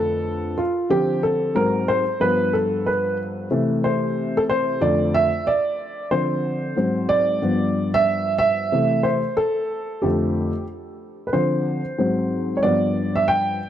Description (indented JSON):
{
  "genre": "hip hop",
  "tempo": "92 BPM",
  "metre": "4/4",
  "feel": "swing 62% on 16ths",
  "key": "unclear",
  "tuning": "A4 = 440 Hz",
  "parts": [
    { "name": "dark upright piano", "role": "solo", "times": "0.0-13.7 s", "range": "F2 to G5", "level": "-19 LUFS", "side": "equal", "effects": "none" }
  ],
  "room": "light reverb, studio reverb",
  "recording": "none",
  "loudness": "-19 LUFS",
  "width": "side -10 dB against mid",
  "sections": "0.0-6.1 A section; 6.1-13.7 B section",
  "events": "upright piano solo 0.0-6.1, 6.1-13.7",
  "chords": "0.0 F6; 0.9 Dm7; 1.6 G#9; 2.2 G7; 3.5 C6; 4.8 F6; 6.1 Dm7; 6.8 G#7; 7.4 G7; 8.7 C6; 10.0 F69; 11.3 Dm7; 12.0 G#7; 12.6 G7",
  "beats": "0.25 | 0.90 1.55 2.21 2.86 | 3.51 4.16 4.82 5.47 | 6.12 6.77 7.42 8.08 | 8.73 9.38 10.03 10.69 | 11.34 11.99 12.64 13.29"
}